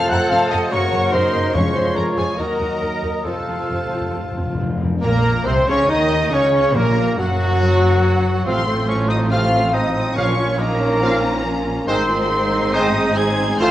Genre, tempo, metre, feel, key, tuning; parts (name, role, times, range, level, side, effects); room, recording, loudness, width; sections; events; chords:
classical, dramatic, fast romantic movement for symphony orchestra; 140 BPM; 4/4; rubato; Bb minor; A4 = 440 Hz
rich symphonic violin section; melody; 0.0-13.7 s; Gb5 to Ab6; -29 LUFS; left 2 dB
dark clarinet; second line; 0.0-13.7 s; C4 to Gb5; -26 LUFS; left 1 dB
large flute ensemble; second line; 0.0-13.7 s; Gb4 to Bb5; -25 LUFS; equal
warm symphonic violin section; second line; 0.0-13.7 s; Db4 to Gb5; -28 LUFS; left 2 dB
mellow French horn section; sustained chords; 0.0-13.7 s; Gb3 to Bb4; -27 LUFS; left 2 dB
warm trombone section; sustained chords; 0.0-13.7 s; Gb2 to Bb3; -29 LUFS; right 2 dB
clear trumpet section; stabs; 0.0-13.7 s; Gb4 to F5; -25 LUFS; equal
warm symphonic cello section; bass; 0.0-13.7 s; Gb2 to Bb4; -25 LUFS; right 1 dB
mellow cor anglais; second line; 0.1-13.7 s; Gb3 to Gb5; -26 LUFS; right 1 dB
warm symphonic viola section; accompaniment; 0.1-13.7 s; F3 to Bb4; -29 LUFS; right 1 dB
warm studio double bass section; bass; 0.1-13.7 s; Gb1 to Gb2; -24 LUFS; right 1 dB
timpani; percussion; 1.5-7.4, 10.2-10.8 s; F2 to Bb2; -26 LUFS; left 1 dB
mellow bassoon; accompaniment; 5.0-13.7 s; Gb3 to Eb4; -26 LUFS; right 1 dB
wet recital hall reverb, RT60 1.4 s; worn, warbling old tape, cassette tape, warbly pitch drift; -16 LUFS; side -13 dB against mid
0.0-5.0 A section; 5.0-13.7 B section
timpani fill 3.3-5.0
0.0 F; 0.7 Gb; 1.5 Db/F; 2.4 Ebm; 3.3 F; 5.0 Bbm; 6.8 Gb; 8.5 F/A; 10.2 Bbm; 11.9 Ab